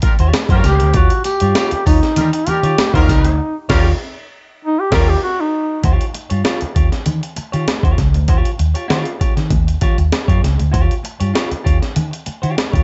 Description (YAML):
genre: funk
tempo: 98 BPM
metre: 4/4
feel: straight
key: Eb mixolydian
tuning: A4 = 440 Hz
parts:
  - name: clear horn section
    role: second line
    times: 0.0-5.1 s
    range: G3 to Bb4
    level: -26 LUFS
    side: equal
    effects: none
  - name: breakbeat sampler-style drum kit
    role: drums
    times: 0.0-12.8 s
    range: crash cymbal, hi-hat, kick drum, snare drum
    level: -20 LUFS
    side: equal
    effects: none
  - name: congas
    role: percussion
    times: 0.0-12.7 s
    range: none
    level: -29 LUFS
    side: equal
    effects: none
  - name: clean electric guitar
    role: accompaniment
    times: 0.2-12.8 s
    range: F4 to Db5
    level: -27 LUFS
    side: equal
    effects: none
  - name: vintage muted fingered electric bass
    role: bass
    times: 0.2-12.8 s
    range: Db2 to Eb3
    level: -18 LUFS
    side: equal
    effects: none
  - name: tambourine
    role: percussion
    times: 0.3-3.2 s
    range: none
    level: -36 LUFS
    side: equal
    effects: none
  - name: mellow duduk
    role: melody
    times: 0.7-5.8 s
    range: Eb4 to Bb4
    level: -20 LUFS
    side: equal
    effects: tape echo
room: light reverb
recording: dark, warm production, nothing above 7.9 kHz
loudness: -16 LUFS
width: mono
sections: 0.0-5.8 A section; 5.8-12.8 B section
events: duduk solo 0.0-5.8; band accent 3.4-5.8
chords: 0.0 Eb9